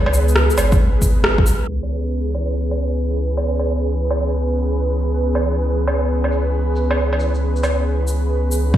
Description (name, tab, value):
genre	future garage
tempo	136 BPM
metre	4/4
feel	swing 66% on 16ths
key	C# minor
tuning	A4 = 443 Hz
part	airy breathy pad	sustained chords	0.0-8.8 s	D#3 to B4	-22 LUFS	right 1 dB	chorus, sidechain pumping
part	soft dub sub bass	bass	0.0-8.8 s	G#1 to C#2	-19 LUFS	equal	sidechain pumping
part	electronic woodblock, shaker and rim click	drums	0.1-8.6 s	none	-23 LUFS	right 1 dB	overdrive, low-pass filter on perc, low-pass filter on snare, low-pass filter on room
part	electronic kick drum	drums	0.7-1.4, 8.7-8.8 s	none	-16 LUFS	equal	overdrive
room	light reverb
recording	played on a big sound system in a bare room, stone room reverb, low-pass filter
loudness	-16 LUFS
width	side -12 dB against mid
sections	0.0-1.7 A section; 1.7-8.7 B section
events	band accent 1.2; filter sweep on drum 1.7-8.7; filter sweep 1.7-8.7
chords	0.0 G#m; 1.7 C#m7